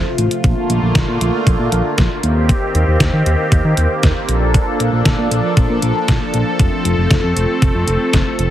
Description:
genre	synth-pop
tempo	117 BPM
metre	4/4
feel	straight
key	Bb major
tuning	A4 = 441 Hz
part	phased analog pad	sustained chords	0.0-8.5 s	C3 to A4	-18 LUFS	equal	phaser, chorus
part	smooth synth bass	bass	0.0-8.5 s	F1 to Eb3	-16 LUFS	equal	none
part	detuned 8-bit digital drum machine	drums	0.2-8.5 s	hi-hat, kick drum, snare drum	-16 LUFS	equal	overdrive
room	light reverb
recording	heavily compressed radio sound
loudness	-13 LUFS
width	side -12 dB against mid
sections	0.4-8.5 A section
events	none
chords	0.4 Bbmaj7; 2.2 Eb6; 4.3 Bbmaj7; 6.6 F

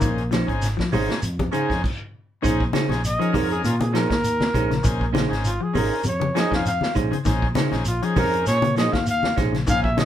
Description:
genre	afrobeat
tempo	99 BPM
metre	4/4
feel	swing 54% on 16ths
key	Bb minor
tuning	A4 = 441 Hz
part	overdriven combo organ	accompaniment	0.0-9.9 s	Db4 to C5	-29 LUFS	left 3 dB	none
part	clean electric guitar	arpeggios	0.0-10.1 s	Db3 to F3	-27 LUFS	left 5 dB	none
part	fingered electric bass	bass	0.0-10.1 s	Ab1 to Bb2	-26 LUFS	equal	none
part	vintage drum kit	drums	0.0-10.1 s	crash cymbal, hi-hat, kick drum, snare drum	-26 LUFS	equal	none
part	shekere	percussion	0.0-10.1 s	none	-28 LUFS	right 1 dB	none
part	clean electric guitar	stabs	0.3-10.1 s	Db4 to C5	-26 LUFS	right 7 dB	none
part	congas	percussion	0.3-10.1 s	none	-27 LUFS	left 2 dB	none
part	breathy trumpet	melody	3.1-10.1 s	F4 to F5	-24 LUFS	equal	none
room	moderate studio ambience, RT60 0.5 s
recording	band playing live in one room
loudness	-19 LUFS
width	side -11 dB against mid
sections	0.0-2.4 A section; 2.4-10.1 B section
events	stop 1.8-2.4; trumpet solo 2.4-10.1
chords	0.0 Bbm11

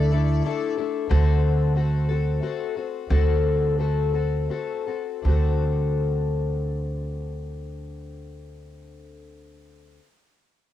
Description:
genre	acoustic folk duo or small band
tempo	80-92 BPM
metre	3/4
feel	straight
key	D mixolydian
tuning	A4 = 439 Hz
part	metal-body resonator slide guitar	melody	0.0-0.7 s	D5	-43 LUFS	right 7 dB	cassette tape, plate reverb
part	fingerpicked plugged-in twelve-string acoustic guitar	accompaniment	0.0-10.1 s	D3 to A4	-28 LUFS	left 9 dB	cassette tape, plate reverb
part	upright bass	bass	0.0-10.0 s	D2	-22 LUFS	right 1 dB	none
room	little or no reverb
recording	home recording on cassette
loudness	-21 LUFS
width	side -12 dB against mid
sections	0.0-1.1 A section; 1.1-5.2 B section; 5.2-9.8 C section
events	slowing down 1.1-5.2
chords	0.0 Dsus2; 1.1 D7

